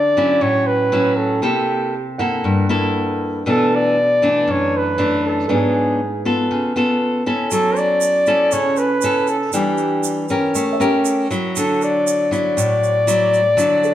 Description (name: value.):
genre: bossa nova.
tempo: 119 BPM.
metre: 4/4.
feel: straight.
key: D major.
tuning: A4 = 439 Hz.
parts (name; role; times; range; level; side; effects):
warm flugelhorn; melody; 0.0-13.9 s; G4 to D5; -17 LUFS; equal; none.
nylon-string guitar; accompaniment; 0.0-13.9 s; F#2 to Bb4; -18 LUFS; left 1 dB; none.
warm grand piano; accompaniment; 0.0-6.5, 10.6-13.9 s; A4 to F#5; -30 LUFS; right 5 dB; none.
tube shaker; percussion; 7.5-13.9 s; none; -29 LUFS; right 8 dB; none.
room: wet stone room reverb, RT60 1.3 s.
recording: band playing live in one room.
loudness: -15 LUFS.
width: side -12 dB against mid.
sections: 0.0-13.9 A section.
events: none.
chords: 0.0 Dmaj9; 1.4 C6; 3.5 Bm7; 5.5 G#m7b5; 6.5 C#7alt; 7.5 F#m7; 9.5 Em7; 10.5 A7b9; 11.6 Dadd9.